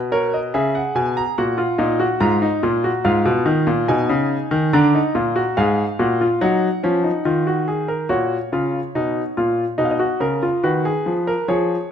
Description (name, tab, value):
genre	classical, baroque-style 3-part fugue for grand piano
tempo	71 BPM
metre	4/4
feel	straight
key	unclear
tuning	A4 = 440 Hz
part	clear concert grand piano	solo	0.0-11.9 s	G#2 to A#5	-17 LUFS	equal	none
room	moderate recital hall reverb, RT60 1.4 s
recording	close, detailed microphones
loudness	-17 LUFS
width	side -8 dB against mid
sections	0.0-8.1 A section; 8.1-11.9 B section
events	none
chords	0.0 G#m/B; 1.4 D#m/A#; 3.0 Fm7b5/Ab; 4.7 A#; 6.4 D#m; 8.1 F#/A#; 9.8 Bmaj7